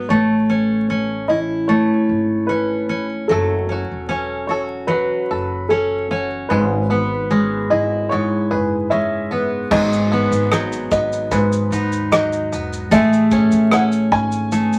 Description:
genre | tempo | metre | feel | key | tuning
acoustic pop | 75 BPM | 4/4 | straight | unclear | A4 = 439 Hz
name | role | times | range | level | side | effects
fingerpicked steel-string acoustic guitar | accompaniment | 0.0-14.8 s | G#2 to G#4 | -20 LUFS | equal | none
upright bass | bass | 0.0-14.7 s | E1 to D#2 | -30 LUFS | equal | none
dark upright piano | melody | 0.1-14.8 s | A4 to G#5 | -24 LUFS | equal | none
bluegrass banjo | arpeggios | 3.3-14.8 s | F#3 to A4 | -31 LUFS | equal | none
natural country drum kit | drums | 9.7-14.8 s | crash cymbal, kick drum, rim click, shaker | -27 LUFS | equal | none
room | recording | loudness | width
moderate studio reverb, RT60 0.6 s | vinyl crackle | -18 LUFS | mono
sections
0.0-9.7 A section; 9.7-14.8 B section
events
none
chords
0.1 Amaj7; 3.3 F#m; 6.5 E6/G#; 9.7 G#m7; 12.9 Amaj7

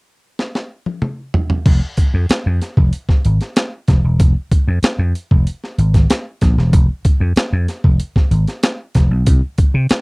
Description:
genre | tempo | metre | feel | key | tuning
funk | 94 BPM | 4/4 | straight | unclear | A4 = 442 Hz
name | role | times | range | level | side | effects
breakbeat sampler-style drum kit | drums | 0.4-10.0 s | crash cymbal, hi-hat, kick drum, snare drum, toms | -14 LUFS | equal | none
vintage slap bass | bass | 1.7-9.9 s | E1 to C3 | -14 LUFS | equal | none
room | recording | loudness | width
little or no reverb | dry, close 1970s-style studio recording | -13 LUFS | side -33 dB against mid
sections
0.0-1.7 A section; 1.7-10.0 B section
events
drum fill 0.4-1.7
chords
none

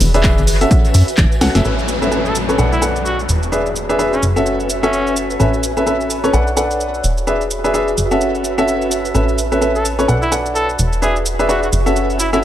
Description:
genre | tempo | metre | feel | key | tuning
piano house | 128 BPM | 4/4 | swing 59% on 16ths | A major | A4 = 440 Hz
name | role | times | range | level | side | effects
plucky analog bass | bass | 0.0-12.4 s | E1 to F#2 | -19 LUFS | equal | sidechain pumping
punchy analog drum machine | drums | 0.0-12.4 s | cabasa, handclaps, hi-hat, snare drum | -23 LUFS | right 1 dB | analog delay
congas and tambourine | percussion | 0.0-1.6 s | none | -26 LUFS | left 3 dB | analog delay
ethereal airy pad | texture | 0.0-12.4 s | F#4 to G#5 | -24 LUFS | right 1 dB | ensemble chorus, built-in reverb, sidechain pumping
clear upright piano | riff | 0.1-12.4 s | C#4 to F#5 | -17 LUFS | left 1 dB | sidechain pumping, analog delay
electronic kick drum | drums | 0.2-1.3 s | none | -14 LUFS | equal | none
downlifter | sound effects | 1.6-5.4 s | none | -25 LUFS | left 1 dB | none
clear trumpet | melody | 2.3-5.2, 9.8-12.4 s | C#4 to A4 | -22 LUFS | equal | analog delay
room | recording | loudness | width
moderate spring reverb, RT60 1.6 s | echo-heavy mix | -13 LUFS | side -12 dB against mid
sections
0.0-1.6 A section; 1.6-12.4 B section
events
drum fill 1.4; band accent 1.5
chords
0.5 F#m7; 1.6 Aadd9; 2.6 Bm7; 3.3 E7; 4.2 F#m7; 5.4 Aadd9; 6.3 Bm7; 7.0 E7; 8.0 F#m7; 9.1 Aadd9; 10.1 Bm7; 10.8 E7; 11.7 F#m7

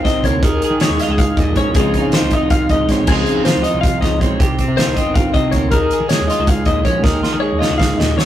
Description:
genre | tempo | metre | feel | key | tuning
math rock and midwest emo | 318 BPM (eighths) | 7/8 | straight | unclear | A4 = 439 Hz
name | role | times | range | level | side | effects
twelve-string electric guitar | accompaniment | 0.0-8.3 s | Ab2 to Ab4 | -18 LUFS | right 2 dB | none
twelve-string electric guitar | arpeggios | 0.0-8.3 s | Ab4 to F5 | -20 LUFS | left 4 dB | none
fuzz picked electric bass | bass | 0.0-8.3 s | G1 to Eb3 | -22 LUFS | equal | overdrive
loose indie drum kit | drums | 0.1-8.3 s | crash cymbal, hi-hat, kick drum, snare drum | -17 LUFS | equal | none
room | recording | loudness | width
moderate studio reverb, RT60 0.6 s | rough rehearsal-room recording, tube saturation | -13 LUFS | side -12 dB against mid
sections
0.0-8.3 A section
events
drum fill 7.0-8.3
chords
0.4 Eb7sus4; 1.8 Dbmaj9; 4.4 Ebmaj13; 5.7 Eb7sus4

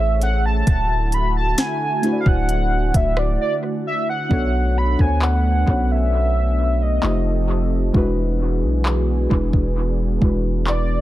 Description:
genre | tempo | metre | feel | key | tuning
contemporary R&B | 66 BPM | 4/4 | straight | unclear | A4 = 440 Hz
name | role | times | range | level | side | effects
warm velvety synth lead | melody | 0.0-11.0 s | D5 to B5 | -23 LUFS | equal | chorus, dub echo
muted felt-like synth keys | accompaniment | 0.0-11.0 s | G#3 to D5 | -25 LUFS | left 1 dB | chorus, dub echo
warm analog pad | sustained chords | 0.0-11.0 s | D3 to A4 | -28 LUFS | right 3 dB | chorus
long sustained 808-style bass | bass | 0.0-11.0 s | D1 to D2 | -20 LUFS | equal | none
smooth R&B drum kit | drums | 0.2-10.9 s | handclaps, hi-hat, kick drum, rim click, snare drum | -20 LUFS | equal | dub echo
room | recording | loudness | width
little or no reverb | echo-heavy mix | -17 LUFS | side -15 dB against mid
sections
0.0-4.3 A section; 4.3-11.0 B section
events
break 3.4-4.3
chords
0.0 Amaj7; 0.7 Dadd9; 4.3 Bm9; 7.0 F9; 7.9 E9

